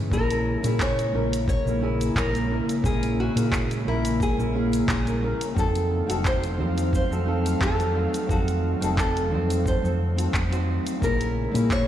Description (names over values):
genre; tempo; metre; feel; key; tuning
sunset chillout; 88 BPM; 4/4; swing 54% on 16ths; unclear; A4 = 437 Hz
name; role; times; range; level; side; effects
airy breathy pad; sustained chords; 0.0-11.9 s; C#3 to F5; -31 LUFS; equal; chorus
nylon-string guitar; melody; 0.1-11.9 s; E4 to C#5; -29 LUFS; equal; digital delay
nylon-string guitar; accompaniment; 0.1-11.9 s; A#3 to C5; -28 LUFS; left 1 dB; auto-pan
hollow-body short-scale fingered electric bass; bass; 0.1-11.9 s; F1 to A#2; -26 LUFS; equal; none
electronic kick drum; drums; 0.1-11.8 s; none; -27 LUFS; equal; none
smooth R&B drum kit; drums; 0.1-11.9 s; handclaps, hi-hat, shaker; -32 LUFS; equal; none
room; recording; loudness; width
moderate lush hall reverb, RT60 2.6 s; played on a big sound system in a bare room, stone room reverb; -22 LUFS; side -11 dB against mid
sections
0.1-11.9 A section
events
none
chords
0.1 A#m7b5; 5.6 F7b9; 11.0 A#m7b5